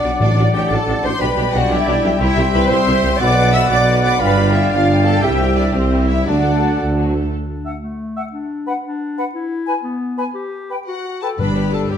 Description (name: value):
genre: cinematic, heroic adventure film score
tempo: 118 BPM (dotted quarters)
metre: 6/8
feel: straight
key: D mixolydian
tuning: A4 = 440 Hz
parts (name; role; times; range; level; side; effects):
- warm symphonic violin section; melody; 0.0-6.8, 10.9-12.0 s; C5 to E6; -27 LUFS; left 3 dB; none
- dark cor anglais; second line; 0.0-11.3 s; B4 to G5; -28 LUFS; equal; none
- flute section; second line; 0.0-11.3 s; F#5 to C6; -26 LUFS; left 3 dB; none
- rich symphonic violin section; second line; 0.0-6.8, 11.4-12.0 s; B4 to E6; -26 LUFS; left 4 dB; none
- warm clarinet; second line; 0.0-12.0 s; A3 to E5; -26 LUFS; left 3 dB; none
- clear symphonic viola section; accompaniment; 0.0-7.3, 11.4-12.0 s; F#3 to B4; -26 LUFS; left 1 dB; none
- mellow French horn section; sustained chords; 0.0-7.1, 11.4-12.0 s; F#3 to G4; -22 LUFS; left 5 dB; none
- clear trumpet section; stabs; 0.0-7.1 s; D5 to F#5; -23 LUFS; right 2 dB; none
- clear tuba; bass; 0.0-7.3 s; G1 to D2; -22 LUFS; right 3 dB; none
- dark symphonic cello section; bass; 0.0-6.8, 11.4-12.0 s; G2 to E5; -21 LUFS; right 2 dB; none
- rich symphonic double bass section; bass; 0.0-7.3, 11.4-12.0 s; G1 to D2; -20 LUFS; right 2 dB; none
- timpani; percussion; 0.2-0.7, 11.4-11.9 s; G2 to A2; -19 LUFS; left 1 dB; none
room: wet recital hall reverb, RT60 1.3 s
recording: none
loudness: -14 LUFS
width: side -8 dB against mid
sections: 0.0-7.3 A section; 7.3-11.4 B section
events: none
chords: 0.2 D/A; 1.2 G/B; 2.2 C; 3.2 Bm; 4.2 G7; 5.2 C; 6.3 D; 7.3 D5; 8.3 N.C.; 9.3 E5; 10.4 N.C.; 11.4 G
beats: | 0.21 0.71 | 1.21 1.71 | 2.21 2.71 | 3.21 3.71 | 4.22 4.72 | 5.23 5.74 | 6.26 6.79 | 7.31 7.82 | 8.33 8.83 | 9.34 9.84 | 10.35 10.87 | 11.39 11.90